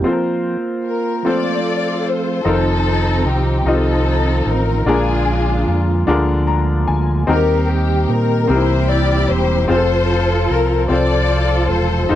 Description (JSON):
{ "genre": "gospel", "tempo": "50 BPM (dotted quarters)", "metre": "6/8", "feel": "straight", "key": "unclear", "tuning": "A4 = 440 Hz", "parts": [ { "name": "clear grand piano", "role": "accompaniment", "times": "0.0-12.2 s", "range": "Bb2 to Bb5", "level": "-21 LUFS", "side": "left 3 dB", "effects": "none" }, { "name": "percussive tonewheel organ", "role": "sustained chords", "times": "0.0-12.2 s", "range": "C3 to C5", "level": "-22 LUFS", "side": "right 4 dB", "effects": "fast rotary speaker" }, { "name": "dark studio string section", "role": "melody", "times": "0.9-12.2 s", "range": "C4 to D5", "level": "-19 LUFS", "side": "left 3 dB", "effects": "none" }, { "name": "fingered electric bass", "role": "bass", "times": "2.5-12.2 s", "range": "E1 to Bb2", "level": "-18 LUFS", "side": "equal", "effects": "none" } ], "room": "little or no reverb", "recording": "dry, close 1970s-style studio recording", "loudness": "-14 LUFS", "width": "side -12 dB against mid", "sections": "0.0-2.5 A section; 2.5-12.2 B section", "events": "tonewheel organ solo 0.0-2.5; break 0.1-2.5; grand piano fill 6.1-7.3", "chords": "0.1 Fsus4; 1.3 F; 2.5 F7; 4.9 Bb7; 6.1 Bb7/D; 7.3 Eb6; 8.5 C7; 9.7 F" }